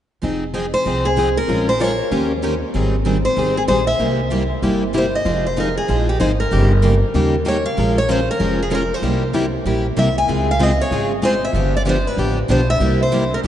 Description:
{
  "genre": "acoustic string swing (jazz manouche)",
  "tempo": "191 BPM",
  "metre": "4/4",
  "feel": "swing 60% on 8ths",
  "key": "F minor",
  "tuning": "A4 = 436 Hz",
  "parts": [
    { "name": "picked plugged-in steel-string acoustic guitar", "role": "accompaniment", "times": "0.2-13.5 s", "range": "C3 to C5", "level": "-21 LUFS", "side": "left 2 dB", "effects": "none" },
    { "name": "picked steel-string acoustic guitar", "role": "accompaniment", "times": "0.2-13.5 s", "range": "C3 to Bb4", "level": "-25 LUFS", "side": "right 5 dB", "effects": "none" },
    { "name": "upright bass", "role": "bass", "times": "0.2-13.5 s", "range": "F1 to Eb2", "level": "-21 LUFS", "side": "equal", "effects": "none" },
    { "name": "picked steel-string acoustic guitar", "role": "melody", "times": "0.7-13.4 s", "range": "G4 to Ab5", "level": "-20 LUFS", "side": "equal", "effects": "none" }
  ],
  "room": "wet cathedral reverb, RT60 5.4 s",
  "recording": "in a vast, echoing space, nothing above 10.9 kHz",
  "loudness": "-15 LUFS",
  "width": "side -11 dB against mid",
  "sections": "0.2-5.3 A section; 5.3-13.5 B section",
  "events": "none",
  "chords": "0.2 Fm7; 1.5 Bbm7; 2.1 Eb7; 2.7 Abmaj9; 4.0 C7; 5.3 Fm7; 6.5 Eb7/G; 7.8 Bbm7; 9.0 C7; 10.3 Dbmaj7; 11.5 G7; 12.8 C7",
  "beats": "| 0.23 0.54 0.86 1.17 | 1.49 1.80 2.11 2.43 | 2.74 3.06 3.37 3.69 | 4.00 4.31 4.63 4.94 | 5.25 5.57 5.88 6.20 | 6.51 6.83 7.14 7.45 | 7.77 8.08 8.40 8.71 | 9.03 9.34 9.65 9.97 | 10.28 10.60 10.91 11.23 | 11.54 11.86 12.17 12.49 | 12.80 13.12 13.43"
}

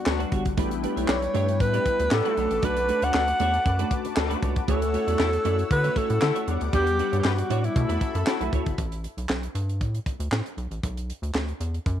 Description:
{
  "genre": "early-eighties boogie funk",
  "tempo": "117 BPM",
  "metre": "4/4",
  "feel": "straight",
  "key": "unclear",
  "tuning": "A4 = 440 Hz",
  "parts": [
    { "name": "breathy alto saxophone", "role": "melody", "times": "0.0-8.3 s", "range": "E4 to F#5", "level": "-26 LUFS", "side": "equal", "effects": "tape echo" },
    { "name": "mellow synth brass", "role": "accompaniment", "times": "0.0-8.8 s", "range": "G3 to F#5", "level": "-32 LUFS", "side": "left 14 dB", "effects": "chorus, phaser" },
    { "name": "brassy analog pad", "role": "sustained chords", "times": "0.0-8.8 s", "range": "G3 to E6", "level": "-37 LUFS", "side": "left 1 dB", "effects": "chorus" },
    { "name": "clear horn section", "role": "second line", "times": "0.1-8.4 s", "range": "F#3 to B4", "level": "-32 LUFS", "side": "left 14 dB", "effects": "none" },
    { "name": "clean electric guitar", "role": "riff", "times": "0.1-8.7 s", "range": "G3 to D5", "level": "-32 LUFS", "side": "right 13 dB", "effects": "ensemble chorus" },
    { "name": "rubbery square bass", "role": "bass", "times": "0.1-12.0 s", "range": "G1 to D3", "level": "-27 LUFS", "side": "equal", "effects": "none" },
    { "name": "tight funk drum kit", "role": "drums", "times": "0.1-12.0 s", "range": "handclaps, hi-hat, kick drum, snare drum", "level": "-28 LUFS", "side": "equal", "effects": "none" }
  ],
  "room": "studio reverb",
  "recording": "1960s-style stereo with parts hard left and right",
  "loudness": "-22 LUFS",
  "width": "side -10 dB against mid",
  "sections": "0.0-8.8 A section; 8.8-12.0 B section",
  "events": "none",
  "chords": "0.0 Em9 (rootless); 0.6 A9sus4; 2.4 Bm7; 4.7 Dmaj9; 6.5 Em9; 7.8 B7sus4; 8.8 A7sus2; 10.6 Bm",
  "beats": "0.07 | 0.58 1.09 1.60 2.12 | 2.63 3.14 3.65 4.17 | 4.68 5.19 5.71 6.22 | 6.73 7.24 7.76 8.27 | 8.78 9.29 9.81 10.32 | 10.83 11.35 11.86"
}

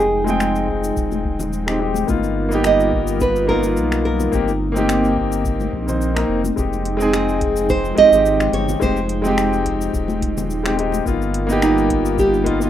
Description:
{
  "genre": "sunset chillout",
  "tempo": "107 BPM",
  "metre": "4/4",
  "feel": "swing 54% on 16ths",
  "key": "F minor",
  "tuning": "A4 = 440 Hz",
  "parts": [
    { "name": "nylon-string guitar", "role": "melody", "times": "0.0-12.7 s", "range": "D#4 to D#5", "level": "-18 LUFS", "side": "right 4 dB", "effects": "ping-pong delay" },
    { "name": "airy breathy pad", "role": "sustained chords", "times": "0.0-12.7 s", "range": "F3 to G5", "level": "-24 LUFS", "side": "equal", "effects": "chorus" },
    { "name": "round analog bass", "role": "bass", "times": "0.0-12.7 s", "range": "Eb1 to B1", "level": "-24 LUFS", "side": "left 1 dB", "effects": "none" },
    { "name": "smooth R&B drum kit", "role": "drums", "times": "0.0-12.7 s", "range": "cabasa, finger snaps, hi-hat", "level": "-29 LUFS", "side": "left 1 dB", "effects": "overdrive" },
    { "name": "clear grand piano", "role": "accompaniment", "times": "0.2-12.7 s", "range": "Ab3 to G5", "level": "-21 LUFS", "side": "moving between left 6 dB and right 1 dB", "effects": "auto-pan, low-pass filter, ping-pong delay" },
    { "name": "congas", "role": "percussion", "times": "0.3-11.2 s", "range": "none", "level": "-28 LUFS", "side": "left 4 dB", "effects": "none" },
    { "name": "electronic kick drum", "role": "drums", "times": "0.7-12.6 s", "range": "none", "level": "-26 LUFS", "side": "left 1 dB", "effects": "none" }
  ],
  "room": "moderate small room reverb, RT60 0.5 s",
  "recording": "rough home demo mix",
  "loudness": "-16 LUFS",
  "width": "side -11 dB against mid",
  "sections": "0.0-12.7 A section",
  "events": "none",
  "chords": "0.0 Fm9; 2.1 G7alt; 4.3 Cm7/G; 6.6 Fm9; 11.1 G7alt",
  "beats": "0.40 0.96 1.52 | 2.08 2.65 3.21 3.77 | 4.33 4.89 5.45 6.01 | 6.57 7.13 7.69 8.25 | 8.81 9.38 9.94 10.50 | 11.06 11.62 12.18"
}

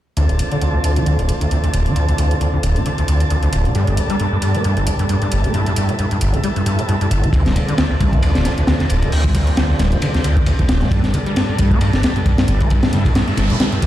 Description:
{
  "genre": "breakbeat, breaks",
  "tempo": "134 BPM",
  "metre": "4/4",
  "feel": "swing 56% on 16ths",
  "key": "D dorian",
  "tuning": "A4 = 439 Hz",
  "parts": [
    { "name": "tonewheel organ", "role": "sustained chords", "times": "0.2-13.9 s", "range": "F3 to A4", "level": "-24 LUFS", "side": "right 1 dB", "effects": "slow rotary speaker, sidechain pumping" },
    { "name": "overdriven acid bass", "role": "riff", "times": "0.2-13.9 s", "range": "D1 to B3", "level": "-16 LUFS", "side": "equal", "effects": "distortion, analog chorus" },
    { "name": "electronic hi-hat", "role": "drums", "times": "0.2-13.9 s", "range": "none", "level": "-31 LUFS", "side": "equal", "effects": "none" },
    { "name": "crunchy breakbeat drum kit", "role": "drums", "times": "7.3-13.9 s", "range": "hi-hat, kick drum, ride cymbal, snare drum", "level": "-18 LUFS", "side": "equal", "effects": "none" },
    { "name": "congas", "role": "percussion", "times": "7.5-13.5 s", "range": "none", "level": "-25 LUFS", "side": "left 2 dB", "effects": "none" },
    { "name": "noise sweep", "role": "sound effects", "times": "12.9-13.9 s", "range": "none", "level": "-27 LUFS", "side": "right 2 dB", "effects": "none" }
  ],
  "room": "moderate small room reverb, RT60 0.5 s",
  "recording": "played on a big sound system in a bare room, large studio reverb",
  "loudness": "-14 LUFS",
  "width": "side -13 dB against mid",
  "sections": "0.2-13.9 A section",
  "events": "filter sweep on acid bass 0.2-13.9; noise sweep 12.9-13.9",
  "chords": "0.2 Dm7; 3.8 Gadd9; 7.3 Dm7; 10.9 Gadd9",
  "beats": "| 0.17 0.62 1.06 1.51 | 1.96 2.41 2.86 3.30 | 3.75 4.20 4.65 5.09 | 5.54 5.99 6.44 6.89 | 7.33 7.78 8.23 8.68 | 9.12 9.57 10.02 10.47 | 10.92 11.36 11.81 12.26 | 12.71 13.15 13.60"
}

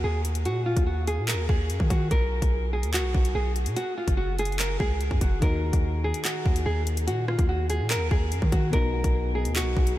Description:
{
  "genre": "hip hop, drill",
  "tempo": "145 BPM",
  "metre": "4/4",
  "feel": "half-time",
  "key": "Eb minor",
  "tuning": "A4 = 440 Hz",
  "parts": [
    { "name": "nylon-string guitar", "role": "melody", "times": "0.0-9.9 s", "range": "F4 to Bb4", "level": "-29 LUFS", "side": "equal", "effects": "low-pass filter, ping-pong delay" },
    { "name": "long sustained 808-style bass", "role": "bass", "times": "0.0-10.0 s", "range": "Gb1 to Eb3", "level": "-27 LUFS", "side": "equal", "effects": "none" },
    { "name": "drill drum kit", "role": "drums", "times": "0.2-10.0 s", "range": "handclaps, hi-hat, kick drum, rim click", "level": "-26 LUFS", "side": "equal", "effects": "none" },
    { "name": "soft electric-piano-like synth keys", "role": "accompaniment", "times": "5.4-10.0 s", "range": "B2 to Bb4", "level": "-34 LUFS", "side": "left 3 dB", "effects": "chorus, low-pass filter" }
  ],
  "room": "light reverb, digital ambience",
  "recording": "none",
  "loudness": "-23 LUFS",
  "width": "side -14 dB against mid",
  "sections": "0.0-5.4 A section; 5.4-10.0 B section",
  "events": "none",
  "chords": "0.0 Ebm; 2.1 B5; 3.8 Gb5; 5.4 Ebm; 8.7 B",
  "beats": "0.04 | 0.46 0.87 1.28 1.70 | 2.11 2.52 2.94 3.35 | 3.77 4.18 4.59 5.01 | 5.42 5.83 6.25 6.66 | 7.08 7.49 7.90 8.32 | 8.73 9.14 9.56 9.97"
}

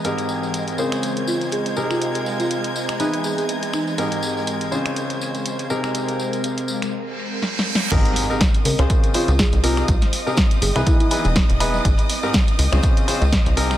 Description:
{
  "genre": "piano house",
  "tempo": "122 BPM",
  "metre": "4/4",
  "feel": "swing 56% on 16ths",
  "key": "Ab major",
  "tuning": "A4 = 436 Hz",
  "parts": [
    { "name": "warm symphonic violin section", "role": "sustained chords", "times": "0.0-13.8 s", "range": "Ab3 to Ab6", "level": "-30 LUFS", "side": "equal", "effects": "sidechain pumping" },
    { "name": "clear baby grand piano", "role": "riff", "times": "0.0-13.8 s", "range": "Ab2 to C5", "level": "-24 LUFS", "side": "left 1 dB", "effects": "sidechain pumping, dub echo" },
    { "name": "punchy analog drum machine", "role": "drums", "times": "0.0-13.8 s", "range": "crash cymbal, finger snaps, hi-hat, snare drum", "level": "-24 LUFS", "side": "equal", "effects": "dub echo" },
    { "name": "tambourine", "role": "percussion", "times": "0.0-13.8 s", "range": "none", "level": "-34 LUFS", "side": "left 2 dB", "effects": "none" },
    { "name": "ethereal airy pad", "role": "texture", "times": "0.0-13.8 s", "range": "Ab3 to Bb5", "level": "-30 LUFS", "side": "right 2 dB", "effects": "ensemble chorus, built-in reverb, sidechain pumping" },
    { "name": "folk marimba with soft mallets", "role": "melody", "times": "0.8-4.0, 8.7-11.1 s", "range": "D#4 to Bb4", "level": "-27 LUFS", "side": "right 1 dB", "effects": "dub echo" },
    { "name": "reverse cymbal and impact", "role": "sound effects", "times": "7.1-9.9 s", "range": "none", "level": "-27 LUFS", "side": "right 2 dB", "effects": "none" },
    { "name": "plucky analog bass", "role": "bass", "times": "7.9-13.8 s", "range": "E1 to Db2", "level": "-19 LUFS", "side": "equal", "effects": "sidechain pumping" },
    { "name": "electronic kick drum", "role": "drums", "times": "7.9-13.4 s", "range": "none", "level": "-18 LUFS", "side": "equal", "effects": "none" }
  ],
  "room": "light reverb, small room ambience",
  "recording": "echo-heavy mix",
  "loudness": "-18 LUFS",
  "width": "side -13 dB against mid",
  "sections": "0.0-7.9 A section; 7.9-13.8 B section",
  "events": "reverse cymbal 7.1-7.9; drum fill 7.4-7.9; drop 7.9-13.8; impact 7.9-9.9",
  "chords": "0.0 Abmaj9; 0.8 Dbmaj7; 1.8 Abmaj9/C; 3.0 Emaj7; 4.0 Abmaj9; 4.7 Dbmaj7; 5.7 Abmaj9/C; 6.9 N.C.; 7.9 Abmaj9; 8.7 Dbmaj7; 9.6 Abmaj9/C; 10.9 Emaj7; 11.8 Abmaj9; 12.6 Dbmaj7",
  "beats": "| 0.05 0.54 1.03 1.52 | 2.01 2.50 3.00 3.49 | 3.98 4.47 4.96 5.46 | 5.95 6.44 6.93 7.42 | 7.92 8.41 8.90 9.39 | 9.88 10.37 10.87 11.36 | 11.85 12.34 12.83 13.32"
}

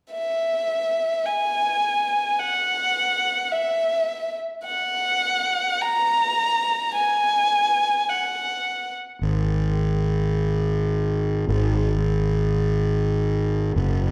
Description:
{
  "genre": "post-rock",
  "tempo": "53 BPM (dotted quarters)",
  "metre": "6/8",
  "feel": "straight",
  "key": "unclear",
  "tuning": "A4 = 440 Hz",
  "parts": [
    { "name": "dark violin", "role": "melody", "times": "0.1-8.9 s", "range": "E5 to A#5", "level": "-23 LUFS", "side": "equal", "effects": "none" },
    { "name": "fuzz fingered electric bass", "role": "bass", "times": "9.2-14.1 s", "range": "F#1 to G#1", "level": "-22 LUFS", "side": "equal", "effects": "overdrive" }
  ],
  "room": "wet recital hall reverb, RT60 1.6 s",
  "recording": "recorded in a church or concert hall",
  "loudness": "-23 LUFS",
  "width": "mono",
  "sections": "0.1-14.1 A section",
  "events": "none",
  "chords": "none",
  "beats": "| 0.10 1.24 | 2.38 3.52 | 4.66 5.79 | 6.93 8.07 | 9.21 10.35 | 11.49 12.63 | 13.77"
}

